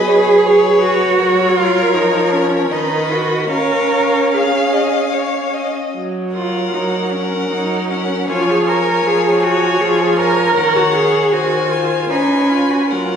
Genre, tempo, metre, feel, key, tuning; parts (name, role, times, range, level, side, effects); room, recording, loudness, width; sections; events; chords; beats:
classical, slow romantic movement for string quartet; 73-83 BPM; 3/4; rubato; A4 = 440 Hz
rich violin; melody; 0.0-13.2 s; B4 to G#5; -23 LUFS; left 6 dB
warm violin; second line; 0.0-13.2 s; A#4 to E#5; -21 LUFS; left 2 dB
warm viola; accompaniment; 0.0-13.2 s; D#3 to C#4; -19 LUFS; right 1 dB
rich cello; bass; 0.0-13.2 s; C#4 to A#4; -16 LUFS; right 2 dB
wet recital hall reverb, RT60 1.6 s; recorded in a church or concert hall, nothing above 10.5 kHz; -13 LUFS; side -7 dB against mid
0.0-13.2 A section
0.0 C#5/F#; 1.2 F#; 2.7 B/D#; 3.5 C#; 5.9 F#; 8.3 C#/E#; 10.6 D#m7; 11.3 G#7/D#; 12.1 C#7
0.46 | 1.20 1.94 2.71 | 3.51 4.32 5.13 | 5.95 6.73 7.51 | 8.28 9.05 9.80 | 10.56 11.32 12.09 | 12.90